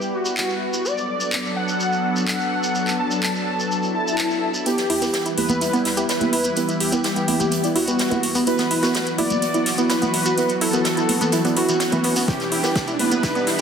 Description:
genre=progressive house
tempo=126 BPM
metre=4/4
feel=straight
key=E minor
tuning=A4 = 440 Hz
part: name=wide unison lead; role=melody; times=0.0-13.6 s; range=F#4 to A5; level=-25 LUFS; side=equal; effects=wide subtle chorus, digital delay
part: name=lush unison pad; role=sustained chords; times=0.0-13.6 s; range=E3 to B4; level=-25 LUFS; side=left 1 dB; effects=chorus, phaser, sidechain pumping
part: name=shekere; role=percussion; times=0.0-13.6 s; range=none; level=-31 LUFS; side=right 1 dB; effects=none
part: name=house drum kit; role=drums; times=0.4-13.6 s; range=handclaps, hi-hat, snare drum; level=-27 LUFS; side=equal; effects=overdrive, high-pass filter on snare, high-pass filter on hats, high-pass filter on room
part: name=swell and riser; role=sound effects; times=3.8-13.6 s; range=none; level=-31 LUFS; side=left 1 dB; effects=none
part: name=deep mellow chord stab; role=stabs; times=4.7-13.6 s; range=B3 to D5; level=-25 LUFS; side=right 3 dB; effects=chorus, sidechain pumping, dub echo
part: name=big rock drum kit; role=drums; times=4.7-13.6 s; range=hi-hat, snare drum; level=-30 LUFS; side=right 1 dB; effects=sidechain pumping on hats, high-pass filter on hats, high-pass filter on snare, high-pass filter on room
part: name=analog pluck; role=arpeggios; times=4.9-13.6 s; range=E3 to G4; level=-25 LUFS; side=equal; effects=chorus, sidechain pumping, dub echo
part: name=round analog bass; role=bass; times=4.9-13.6 s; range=B1 to E2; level=-42 LUFS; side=equal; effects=none
part: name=cowbell, congas and bongos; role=percussion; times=5.0-13.6 s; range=none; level=-29 LUFS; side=right 2 dB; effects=sidechain pumping on perc
part: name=electronic kick drum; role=drums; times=12.3-13.3 s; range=none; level=-26 LUFS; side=equal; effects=overdrive
room=wet concert hall reverb, RT60 1.8 s, small room ambience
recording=dense, heavily limited modern master, high-pass filter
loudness=-18 LUFS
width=side -7 dB against mid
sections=0.0-4.7 A section; 4.7-13.6 B section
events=swell 3.8-4.7; build-up 4.7-13.6; filter sweep on synth pluck 4.7-13.6; drum fill 12.3-13.6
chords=0.0 Em; 0.9 D6; 4.7 Em; 8.5 Bsus4; 12.3 Em

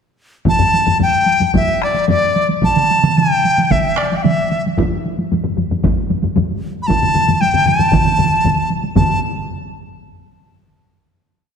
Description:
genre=japanese traditional, taiko drum ensemble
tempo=113 BPM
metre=4/4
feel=uneven beats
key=unclear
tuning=A4 = 440 Hz
part: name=dizi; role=melody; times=0.5-9.2 s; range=D5 to B5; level=-15 LUFS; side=left 1 dB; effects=none
part: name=taiko ensemble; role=percussion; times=0.5-9.2 s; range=none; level=-20 LUFS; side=right 1 dB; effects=none
part: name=taiko ensemble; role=percussion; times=0.5-9.2 s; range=none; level=-22 LUFS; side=right 1 dB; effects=none
part: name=taiko ensemble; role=percussion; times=0.6-9.4 s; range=none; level=-21 LUFS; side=left 5 dB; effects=none
part: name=taiko ensemble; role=percussion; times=2.8-9.4 s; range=none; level=-19 LUFS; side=right 4 dB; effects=none
room=wet scoring stage reverb, RT60 1.9 s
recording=none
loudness=-13 LUFS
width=side -6 dB against mid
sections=0.5-9.0 A section; 9.0-11.0 final note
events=speeding up 0.5-11.0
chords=none

